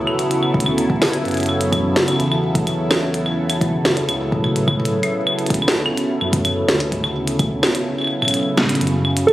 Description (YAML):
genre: IDM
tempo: 127 BPM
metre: 4/4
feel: straight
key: F# minor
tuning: A4 = 442 Hz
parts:
  - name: phased analog pad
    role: sustained chords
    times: 0.0-9.3 s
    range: C#3 to A4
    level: -20 LUFS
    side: equal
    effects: phaser, chorus
  - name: round analog bass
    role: bass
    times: 0.0-9.3 s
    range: D1 to A2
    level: -24 LUFS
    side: equal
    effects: none
  - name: glitchy drum kit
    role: drums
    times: 0.1-9.3 s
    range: claves, hi-hat, snare drum, toms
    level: -20 LUFS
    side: equal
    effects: none
  - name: electronic kick drum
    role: drums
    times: 0.5-9.3 s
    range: none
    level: -20 LUFS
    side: equal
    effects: none
  - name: warbly lo-fi synth keys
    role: melody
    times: 9.3 s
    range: A4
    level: -10 LUFS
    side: right 2 dB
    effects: chorus
room: wet echo chamber reverb, RT60 1.9 s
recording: recorded on a phone in the room, club reverb, compression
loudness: -16 LUFS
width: side -15 dB against mid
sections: 0.0-8.8 A section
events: none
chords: 0.0 D6; 1.3 F#m7; 5.0 D6; 8.8 F#5